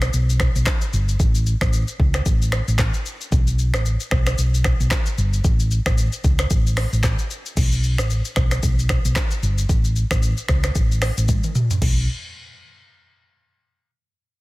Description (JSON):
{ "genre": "afrobeats", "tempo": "113 BPM", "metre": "4/4", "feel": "swing 58% on 16ths", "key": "unclear", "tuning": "A4 = 440 Hz", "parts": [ { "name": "hollow-body short-scale fingered electric bass", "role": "bass", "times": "0.0-12.1 s", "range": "G1 to C#2", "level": "-20 LUFS", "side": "equal", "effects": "none" }, { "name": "afro-pop drum kit", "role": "drums", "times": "0.0-12.0 s", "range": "crash cymbal, finger snaps, handclaps, hi-hat, kick drum, rim click, shaker, toms", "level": "-20 LUFS", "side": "equal", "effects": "overdrive" } ], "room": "little or no reverb", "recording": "dense, heavily limited modern master", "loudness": "-17 LUFS", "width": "side -20 dB against mid", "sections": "0.0-7.6 A section; 7.6-11.8 B section; 11.8-13.9 C section", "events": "drum fill 11.3-11.8", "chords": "none" }